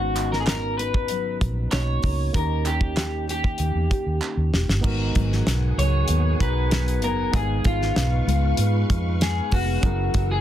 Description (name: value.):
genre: indie pop, bedroom pop.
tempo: 96 BPM.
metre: 4/4.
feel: straight.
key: G# minor.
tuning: A4 = 439 Hz.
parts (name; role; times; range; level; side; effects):
electric guitar through a small old amp; melody; 0.0-10.4 s; E#4 to C#5; -27 LUFS; left 1 dB; wide subtle chorus, tape echo.
barky tine electric piano; accompaniment; 0.0-10.4 s; A#3 to A#5; -32 LUFS; right 6 dB; overdrive.
nylon-string guitar; accompaniment; 0.0-10.4 s; F#2 to A#4; -31 LUFS; left 5 dB; wide subtle chorus, vibrato effect.
vintage muted fingered electric bass; bass; 0.0-10.4 s; E1 to G#2; -23 LUFS; equal; none.
damped 70s drum kit; drums; 0.2-10.3 s; crash cymbal, hi-hat, kick drum, snare drum; -24 LUFS; equal; none.
group handclap; percussion; 0.2-4.4 s; none; -33 LUFS; right 5 dB; none.
soft string machine; sustained chords; 5.2-10.4 s; G#4 to E6; -36 LUFS; equal; ensemble chorus.
room: light reverb.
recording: dense, heavily limited modern master.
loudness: -20 LUFS.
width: side -11 dB against mid.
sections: 0.0-4.8 A section; 4.8-10.4 B section.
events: drum fill 4.2-4.8.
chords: 0.0 Bmaj9/G#; 2.3 D#7; 4.8 G#m7; 7.3 C#7/G#; 9.8 F#7.